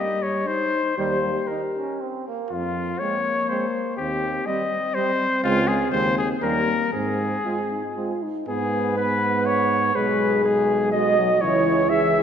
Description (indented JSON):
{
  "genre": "classical, brass quintet",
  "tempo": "115-125 BPM",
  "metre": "3/4",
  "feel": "rubato",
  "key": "Ab major, G# minor from 8.5 s",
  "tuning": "A4 = 439 Hz",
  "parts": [
    { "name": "mellow trumpet", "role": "melody", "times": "0.0-12.2 s", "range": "F4 to E5", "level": "-23 LUFS", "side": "left 3 dB", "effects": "none" },
    { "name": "mellow French horn", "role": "accompaniment", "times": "0.0-12.2 s", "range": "G3 to B4", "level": "-26 LUFS", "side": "left 2 dB", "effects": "none" },
    { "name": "mellow flugelhorn", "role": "second line", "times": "1.0-12.2 s", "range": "Bb3 to E5", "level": "-29 LUFS", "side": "right 7 dB", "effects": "none" },
    { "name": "warm trombone", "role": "accompaniment", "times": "1.0-12.2 s", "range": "E3 to B3", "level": "-29 LUFS", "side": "right 4 dB", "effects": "none" },
    { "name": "clear tuba", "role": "bass", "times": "1.0-12.2 s", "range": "B1 to G#2", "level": "-29 LUFS", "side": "right 3 dB", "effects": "none" }
  ],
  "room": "wet scoring stage reverb, RT60 1.9 s",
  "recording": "none",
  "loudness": "-20 LUFS",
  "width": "side -8 dB against mid",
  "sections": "0.0-8.5 A section; 8.5-12.2 B section",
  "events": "none",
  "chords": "0.0 Eb/G; 1.0 Eb; 2.5 Fm; 4.0 Cm/Eb; 5.4 Dbmaj7; 5.9 Ab/Eb; 6.4 Eb7; 6.9 Ab; 8.5 G#m; 10.0 G#m/B; 11.4 C#m"
}